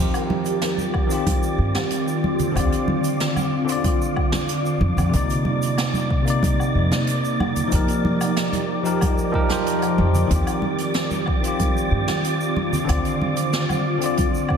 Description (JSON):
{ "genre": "sunset chillout", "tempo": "93 BPM", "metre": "4/4", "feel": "straight", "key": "Eb major", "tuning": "A4 = 441 Hz", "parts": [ { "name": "bell-like tine electric piano", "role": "accompaniment", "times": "0.0-14.6 s", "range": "C3 to D5", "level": "-24 LUFS", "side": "moving between left 5 dB and right 3 dB", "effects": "auto-pan, low-pass filter, ping-pong delay" }, { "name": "ethereal airy pad", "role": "sustained chords", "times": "0.0-14.6 s", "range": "C3 to D5", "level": "-26 LUFS", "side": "equal", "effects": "ensemble chorus, built-in reverb, phaser" }, { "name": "upright bass", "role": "bass", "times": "0.0-13.0 s", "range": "C2 to G2", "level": "-21 LUFS", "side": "equal", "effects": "none" }, { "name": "wind-like tuned noise texture", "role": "texture", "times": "0.3-14.6 s", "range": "D5 to D6", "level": "-29 LUFS", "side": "equal", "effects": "built-in reverb" }, { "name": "jazz brush drum kit", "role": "drums", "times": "0.1-14.6 s", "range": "hi-hat, shaker, snare drum, woodblock", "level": "-29 LUFS", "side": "right 1 dB", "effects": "none" }, { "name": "congas", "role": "percussion", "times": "0.3-14.3 s", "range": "none", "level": "-29 LUFS", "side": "right 1 dB", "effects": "none" }, { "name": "electronic kick drum", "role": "drums", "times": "0.9-14.6 s", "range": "none", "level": "-23 LUFS", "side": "equal", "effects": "overdrive" } ], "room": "wet lush hall reverb, RT60 1.9 s, small room ambience", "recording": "dreamy mix soaked in reverb", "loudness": "-19 LUFS", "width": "side -7 dB against mid", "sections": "0.0-14.6 A section", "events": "none", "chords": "0.0 Eb69; 2.6 Dm7; 5.1 Cm9; 7.4 F9sus4; 10.3 Eb69; 12.9 Dm7", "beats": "0.62 1.27 1.92 | 2.56 3.21 3.85 4.50 | 5.14 5.79 6.43 7.08 | 7.72 8.37 9.01 9.66 | 10.30 10.95 11.59 12.24 | 12.88 13.53 14.17" }